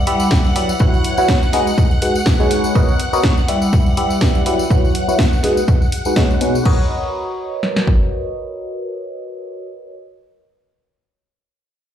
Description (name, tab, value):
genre	piano house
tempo	123 BPM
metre	4/4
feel	swing 55% on 16ths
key	B major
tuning	A4 = 440 Hz
part	string machine, violins	sustained chords	0.0-6.7 s	F#5	-25 LUFS	equal	ensemble chorus, sidechain pumping
part	barking FM electric piano	riff	0.0-10.0 s	B2 to F#5	-19 LUFS	equal	phaser, sidechain pumping, low-pass filter, digital delay
part	garage drum kit	drums	0.1-6.8 s	crash cymbal, hi-hat, snare drum	-23 LUFS	equal	studio reverb
part	tambourine	percussion	0.2-6.6 s	none	-33 LUFS	left 4 dB	none
part	punchy analog drum machine	drums	0.3-8.0 s	kick drum, snare drum	-15 LUFS	equal	studio reverb
room	light reverb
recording	played on a big sound system in a bare room, large studio reverb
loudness	-14 LUFS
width	side -10 dB against mid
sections	0.0-6.7 A section; 6.7-10.6 B section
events	filter sweep on FM electric piano 0.0-6.7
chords	0.0 G6; 0.8 F#7sus4; 1.5 G#m7; 2.8 Bmaj9; 3.5 G6; 4.7 F#7sus4; 5.4 G#m7; 6.7 Bmaj9